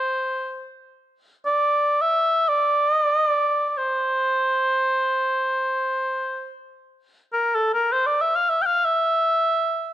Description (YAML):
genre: caucasian folk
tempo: free time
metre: none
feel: none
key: unclear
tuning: A4 = 439 Hz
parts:
  - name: warm cor anglais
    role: solo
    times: 0.0-9.9 s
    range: A4 to G5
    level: -19 LUFS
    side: equal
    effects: none
room: light reverb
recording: dark, warm production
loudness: -19 LUFS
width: side -12 dB against mid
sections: 0.0-9.9 A section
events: none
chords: none